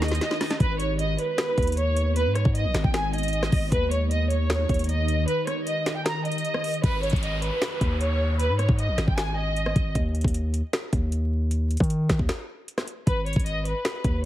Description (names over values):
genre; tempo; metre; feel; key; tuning
hip hop, trap; 154 BPM; 4/4; half-time; G# harmonic minor; A4 = 441 Hz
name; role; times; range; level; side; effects
rich studio violin section; melody; 0.0-9.9, 13.1-14.2 s; B4 to A#5; -28 LUFS; right 1 dB; low-pass filter
ethereal airy pad; sustained chords; 0.0-6.8 s; D#3 to A#4; -33 LUFS; equal; ensemble chorus, built-in reverb, phaser
distorted 808-style bass; bass; 0.0-14.3 s; G#1 to D#3; -25 LUFS; equal; distortion
trap drum kit; drums; 0.0-14.1 s; finger snaps, hi-hat, kick drum, rim click, snare drum; -26 LUFS; equal; overdrive
downlifter; sound effects; 6.8-10.0 s; none; -38 LUFS; equal; none
room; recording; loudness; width
little or no reverb; heavily compressed radio sound, vinyl crackle; -22 LUFS; side -14 dB against mid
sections
0.0-6.8 A section; 6.8-14.3 B section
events
drum fill 0.0-0.6; break 5.3-6.8, 12.3-13.1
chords
0.0 D#; 0.6 G#m; 3.7 D#; 6.8 G#m; 10.0 N.C.; 13.1 G#m